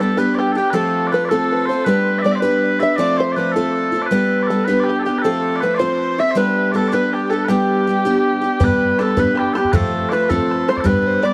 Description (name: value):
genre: celtic folk, Celtic jig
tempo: 107 BPM (dotted quarters)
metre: 6/8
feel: straight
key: G mixolydian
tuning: A4 = 440 Hz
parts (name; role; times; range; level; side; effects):
- mellow small bagpipes; melody; 0.0-11.3 s; G4 to E5; -23 LUFS; equal; plate reverb, tape echo
- dark fiddle; second line; 0.0-11.3 s; G4 to E5; -27 LUFS; equal; plate reverb, tape echo
- open-back banjo; second line; 0.0-11.3 s; G4 to E5; -25 LUFS; equal; plate reverb
- picked steel-string acoustic guitar; accompaniment; 0.0-11.3 s; F3 to G4; -22 LUFS; equal; none
- bodhran; percussion; 8.6-11.3 s; none; -25 LUFS; equal; none
room: moderate studio reverb, RT60 0.6 s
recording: dark, warm production, vinyl crackle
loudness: -17 LUFS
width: mono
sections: 0.0-8.6 A section; 8.6-11.3 A section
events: none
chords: 0.0 G; 0.7 F; 1.9 G; 3.0 F; 4.1 G; 5.2 F; 6.4 G; 9.7 F